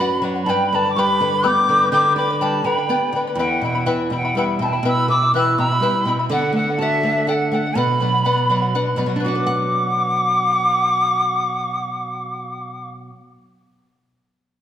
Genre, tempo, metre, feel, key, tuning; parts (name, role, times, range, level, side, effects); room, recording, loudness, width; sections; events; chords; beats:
andean folk; 82 BPM (dotted quarters); 6/8; straight; B minor; A4 = 439 Hz
large quena; melody; 0.0-12.9 s; E5 to E6; -20 LUFS; equal
bright reedy polished pan flute; second line; 0.0-12.9 s; F#5 to G6; -25 LUFS; right 2 dB
charango; accompaniment; 0.0-13.5 s; E4 to B5; -23 LUFS; left 4 dB
nylon-string guitar; accompaniment; 0.0-13.6 s; E2 to F#5; -23 LUFS; right 2 dB
wet recital hall reverb, RT60 1.7 s; -16 LUFS; side -10 dB against mid
0.0-9.2 A section; 9.2-12.1 B section
0.5 G; 3.4 Em; 6.3 D; 7.8 Bm
| 0.47 1.20 | 1.93 2.66 | 3.39 4.12 | 4.84 5.57 | 6.30 7.03 | 7.76 8.49 | 9.22 9.95 | 10.68 11.41